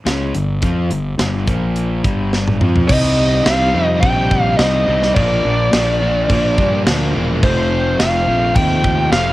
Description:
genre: hard rock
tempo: 106 BPM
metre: 4/4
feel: straight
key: unclear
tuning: A4 = 437 Hz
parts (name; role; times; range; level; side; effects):
- distorted electric guitar; riff; 0.1-9.3 s; F2 to F4; -27 LUFS; right 6 dB; distortion, cassette tape
- overdriven semi-hollow guitar; riff; 0.1-9.3 s; F2 to F4; -22 LUFS; left 5 dB; cassette tape
- fuzz fingered electric bass; bass; 0.1-9.3 s; E1 to G2; -19 LUFS; equal; overdrive
- tight metal drum kit; drums; 0.1-9.3 s; crash cymbal, hi-hat, kick drum, snare drum, toms; -19 LUFS; equal; cassette tape
- bluesy overdriven lead guitar; melody; 2.9-9.3 s; C5 to G5; -17 LUFS; equal; distortion, cassette tape
- overdriven tonewheel organ; sustained chords; 2.9-9.3 s; Bb3 to G5; -33 LUFS; equal; none
- overdriven electric guitar; riff; 2.9-9.3 s; F2 to Eb4; -23 LUFS; equal; cassette tape
room: small room ambience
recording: home recording on cassette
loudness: -13 LUFS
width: side -17 dB against mid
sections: 0.0-2.9 A section; 2.9-9.3 B section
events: drum fill 2.3-2.9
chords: 0.0 G5; 1.5 Bb5; 2.0 G5; 2.9 Cm; 5.2 Bb; 7.4 F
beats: 0.06 | 0.63 1.19 1.76 2.33 | 2.90 3.46 4.03 4.60 | 5.16 5.73 6.29 6.86 | 7.43 7.99 8.56 9.12

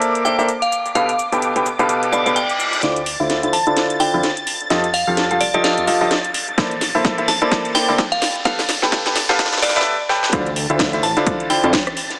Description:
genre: piano house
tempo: 128 BPM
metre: 4/4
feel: swing 58% on 16ths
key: D minor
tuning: A4 = 443 Hz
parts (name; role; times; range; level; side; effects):
- analog string pad; sustained chords; 0.0-12.2 s; D6 to A6; -26 LUFS; equal; ensemble chorus, sidechain pumping
- clear upright piano; riff; 0.0-11.7 s; B2 to G5; -19 LUFS; equal; sidechain pumping, low-pass filter
- house drum kit; drums; 0.0-12.2 s; hi-hat, rim click, shaker, snare drum; -21 LUFS; equal; overdrive, high-pass filter on perc, high-pass filter on hats, high-pass filter on snare, high-pass filter on room
- unplugged drum kit; drums; 0.0-2.8, 10.3-12.2 s; ride cymbal, snare drum; -35 LUFS; equal; none
- glassy synth bell; melody; 0.2-11.7 s; D5 to A5; -22 LUFS; equal; chorus, phaser, tape echo
- reverse cymbal and riser; sound effects; 2.1-9.9 s; none; -27 LUFS; equal; none
- fat analog bass; bass; 2.8-11.7 s; G1 to F2; -26 LUFS; equal; tube saturation, sidechain pumping
- electronic kick drum; drums; 6.6-11.8 s; none; -22 LUFS; equal; overdrive
room: moderate plate reverb, RT60 2.5 s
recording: high-pass filter, small speaker sound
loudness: -15 LUFS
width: side -29 dB against mid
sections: 0.0-2.8 A section; 2.8-10.3 B section; 10.3-12.2 C section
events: reverse cymbal 2.1-2.8; build-up 2.8-10.3; drum fill 2.8-9.9, 10.1; riser 2.8-9.9; filter sweep on upright piano 2.8-10.3; filter sweep 2.8-10.3; drop 10.3-12.2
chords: 0.0 Bbmaj9#11; 0.7 G9/B; 2.8 Dm9; 4.7 F9; 6.3 Bbmaj9#11; 8.2 G9; 10.3 Dm9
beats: 0.01 0.48 | 0.95 1.42 1.89 2.36 | 2.83 3.30 3.77 4.23 | 4.70 5.17 5.64 6.11 | 6.58 7.05 7.51 7.98 | 8.45 8.92 9.39 9.86 | 10.33 10.80 11.27 11.73

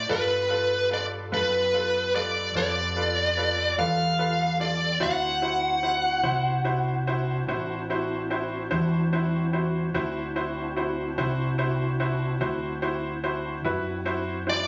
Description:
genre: slow blues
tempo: 49 BPM (dotted quarters)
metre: 12/8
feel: straight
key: D mixolydian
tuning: A4 = 440 Hz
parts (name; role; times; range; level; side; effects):
- smooth overdriven lead guitar; melody; 0.0-14.7 s; B4 to F#5; -27 LUFS; equal; none
- tonewheel organ; sustained chords; 0.0-14.7 s; B3 to A4; -39 LUFS; equal; overdrive, chorus vibrato, slow rotary speaker
- deep dub fingered electric bass; bass; 0.0-14.7 s; A1 to G2; -32 LUFS; equal; none
- bright upright piano; accompaniment; 0.1-14.7 s; E4 to D5; -32 LUFS; equal; none
room: little or no reverb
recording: recorded on a phone in the room, club reverb, nothing above 7.6 kHz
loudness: -26 LUFS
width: mono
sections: 0.0-14.7 A section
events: none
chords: 0.1 G9; 5.0 D9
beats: | 0.09 1.32 2.55 3.78 | 5.01 6.24 7.47 8.71 | 9.94 11.18 12.41 13.64

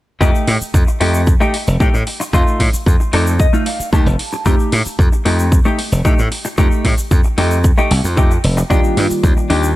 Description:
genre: nu-disco, nu disco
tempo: 113 BPM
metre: 4/4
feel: straight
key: F mixolydian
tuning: A4 = 440 Hz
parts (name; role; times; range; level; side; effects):
- semi-hollow electric guitar; riff; 0.2-9.7 s; A3 to A5; -19 LUFS; left 1 dB; lush chorus, tape echo
- glassy slap bass; bass; 0.2-9.8 s; F1 to A2; -16 LUFS; equal; none
- electronic kick drum; drums; 0.2-9.3 s; none; -14 LUFS; equal; none
- egg shaker; percussion; 0.2-9.7 s; none; -31 LUFS; left 1 dB; none
- electronic hi-hat; drums; 0.5-9.6 s; none; -26 LUFS; right 1 dB; none
- barky reed electric piano; accompaniment; 8.7-9.8 s; Eb3 to D5; -19 LUFS; equal; overdrive, phaser, sidechain pumping, tape echo
room: digital ambience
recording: echo-heavy mix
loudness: -12 LUFS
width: side -16 dB against mid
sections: 0.2-9.8 A section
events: clean electric guitar fill 2.9-4.5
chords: 0.2 F9; 8.7 Ebmaj7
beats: | 0.21 0.74 1.27 1.80 | 2.34 2.87 3.40 3.93 | 4.46 4.99 5.52 6.05 | 6.58 7.11 7.64 8.18 | 8.71 9.24

